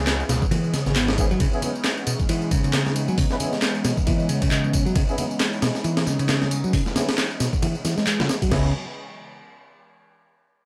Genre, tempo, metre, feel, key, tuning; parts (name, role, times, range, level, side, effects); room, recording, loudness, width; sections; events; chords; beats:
breakbeat, breaks; 135 BPM; 4/4; swing 58% on 16ths; C# minor; A4 = 441 Hz
phased analog pad; sustained chords; 0.0-8.7 s; E3 to G#4; -33 LUFS; equal; phaser, chorus, sidechain pumping
phased detuned saw bass; bass; 0.0-1.3, 8.5-8.7 s; G#1 to C#2; -27 LUFS; equal; phaser
breakbeat sampler-style drum kit; drums; 0.1-8.6 s; crash cymbal, hi-hat, kick drum, ride cymbal, snare drum; -27 LUFS; equal; studio reverb
electronic handclaps and tambourine; drums; 0.1-8.5 s; -31 LUFS; equal; overdrive, studio reverb
modern bright picked electric bass; riff; 0.3-8.7 s; B2 to B3; -27 LUFS; equal; vintage 12-bit sampler grit, low-pass filter, analog delay
congas; percussion; 0.5-8.3 s; -37 LUFS; equal
dark brass ensemble; stabs; 1.2-8.7 s; B3 to B4; -33 LUFS; equal; low-pass filter, analog delay
light reverb; dry, gritty hardware recording; -22 LUFS; mono
0.0-8.5 A section; 8.5-10.3 B section
filter sweep on picked electric bass 0.0-8.5; filter sweep on brass ensemble 0.0-8.5
0.0 C#m7
0.07 0.51 0.96 | 1.40 1.85 2.29 2.73 | 3.18 3.62 4.07 4.51 | 4.96 5.40 5.85 6.29 | 6.74 7.18 7.62 8.07 | 8.51